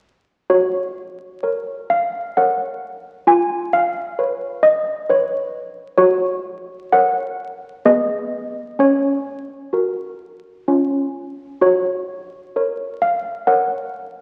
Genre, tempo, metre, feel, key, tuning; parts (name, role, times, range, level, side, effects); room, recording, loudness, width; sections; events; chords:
classical, tune for handbells; 65 BPM; 3/4; straight; F# major; A4 = 438 Hz
malleted handbells; solo; 0.5-14.2 s; B3 to G#5; -19 LUFS; equal
wet recital hall reverb, RT60 1.8 s; very old 78 rpm record, vinyl crackle; -19 LUFS; mono
0.5-14.2 A section
0.5 F#; 3.3 C#7/E#; 6.0 F#; 7.8 G#m/B; 8.8 F#/C#; 10.7 C#; 11.6 F#